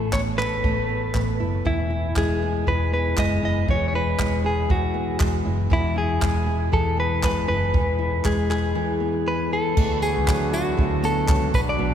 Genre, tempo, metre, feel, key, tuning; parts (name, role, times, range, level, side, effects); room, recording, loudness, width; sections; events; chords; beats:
acoustic pop; 118 BPM; 4/4; swing 55% on 16ths; A4 = 440 Hz
direct-recorded clean electric guitar; melody; 0.0-11.9 s; E4 to D#5; -25 LUFS; left 1 dB
flamenco guitar; accompaniment; 0.0-11.9 s; B2 to A4; -27 LUFS; equal
vintage muted fingered electric bass; bass; 0.0-11.9 s; E1 to D2; -26 LUFS; equal
compact cocktail drum kit; drums; 0.1-11.7 s; crash cymbal, handclaps, kick drum, tambourine; -26 LUFS; right 1 dB
hand-pumped harmonium; sustained chords; 9.8-11.9 s; D3 to F#4; -31 LUFS; equal
wet cathedral reverb, RT60 5.5 s; recorded in a church or concert hall; -20 LUFS; side -9 dB against mid
0.0-9.8 A section; 9.8-11.9 B section
0.0 Asus2; 1.7 E; 9.8 D6
0.13 0.64 1.15 | 1.65 2.16 2.67 3.18 | 3.68 4.19 4.70 5.21 | 5.71 6.22 6.73 7.23 | 7.74 8.25 8.75 9.26 | 9.77 10.27 10.78 11.29 | 11.79